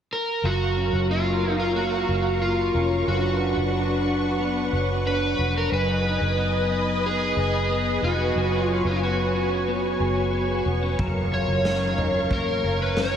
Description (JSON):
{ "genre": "dream pop", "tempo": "91 BPM", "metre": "4/4", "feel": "straight", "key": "F# major", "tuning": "A4 = 437 Hz", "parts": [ { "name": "overdriven slide guitar", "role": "melody", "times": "0.1-13.2 s", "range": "D#4 to C#5", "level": "-26 LUFS", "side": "right 2 dB", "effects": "analog chorus, diffuse ambient delay" }, { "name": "string machine, violas", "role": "sustained chords", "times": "0.4-13.2 s", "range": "D4 to D#6", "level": "-27 LUFS", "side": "equal", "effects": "ensemble chorus" }, { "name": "electric guitar at the edge of break-up", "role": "arpeggios", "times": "0.4-13.2 s", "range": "F#3 to C#5", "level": "-28 LUFS", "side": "left 2 dB", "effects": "analog chorus, diffuse ambient delay" }, { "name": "vintage muted fingered electric bass", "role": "bass", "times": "0.4-13.2 s", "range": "E#1 to F#1", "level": "-27 LUFS", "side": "equal", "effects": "none" }, { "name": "raw garage drum kit", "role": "drums", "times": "11.0-13.1 s", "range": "kick drum, snare drum, toms", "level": "-29 LUFS", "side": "equal", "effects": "none" } ], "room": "wet cathedral reverb, RT60 4.9 s", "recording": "dreamy mix soaked in reverb", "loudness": "-21 LUFS", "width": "side -8 dB against mid", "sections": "0.4-13.2 A section", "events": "none", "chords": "0.4 F#maj7; 3.1 Bmadd9/F#; 5.7 G#m/F#; 8.4 C#7sus4/F#; 11.0 F#maj7", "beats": "| 0.44 1.10 1.76 2.42 | 3.08 3.74 4.40 5.06 | 5.72 6.38 7.03 7.69 | 8.35 9.01 9.67 10.33 | 10.99 11.65 12.31 12.97" }